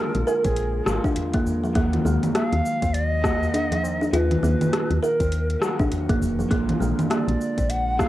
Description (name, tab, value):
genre	organic downtempo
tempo	101 BPM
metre	4/4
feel	swing 60% on 16ths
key	unclear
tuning	A4 = 441 Hz
part	breathy bright ney	melody	0.0-8.1 s	Ab4 to Gb5	-28 LUFS	left 1 dB	cassette tape, tape echo
part	electric guitar through a small old amp	accompaniment	0.0-8.1 s	Bb2 to Gb5	-32 LUFS	left 2 dB	warbly pitch drift, sidechain pumping, cassette tape, analog delay
part	deep house drum kit	drums	0.1-8.1 s	cabasa, congas, hi-hat, rim click	-26 LUFS	equal	overdrive, cassette tape
part	woody FM bass	bass	0.2-8.1 s	Eb1 to Eb2	-24 LUFS	equal	sidechain pumping
part	kalimba	arpeggios	0.3-8.1 s	F3 to Bb4	-25 LUFS	right 2 dB	cassette tape, analog delay
part	electronic kick drum	drums	0.4-8.1 s	none	-25 LUFS	equal	overdrive, cassette tape
part	tabla	percussion	0.4-7.7 s	none	-34 LUFS	left 1 dB	none
room	moderate spring reverb, RT60 1.2 s, digital ambience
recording	home recording on cassette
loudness	-20 LUFS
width	side -14 dB against mid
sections	0.0-8.1 A section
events	none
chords	0.0 Bb7; 1.8 Ebm; 6.5 Bb7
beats	0.57 1.16 | 1.76 2.35 2.94 3.54 | 4.13 4.73 5.32 5.92 | 6.51 7.10 7.70